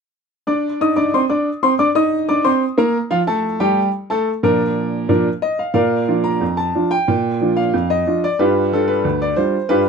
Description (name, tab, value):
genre	ragtime piano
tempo	91 BPM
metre	2/4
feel	straight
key	Bb major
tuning	A4 = 441 Hz
part	clear upright piano	solo	0.5-9.9 s	D2 to Eb6	-15 LUFS	equal	none
room	light reverb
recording	close, detailed microphones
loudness	-15 LUFS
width	side -5 dB against mid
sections	0.5-5.8 A section; 5.8-9.9 B section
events	none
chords	0.5 Bb; 8.4 G7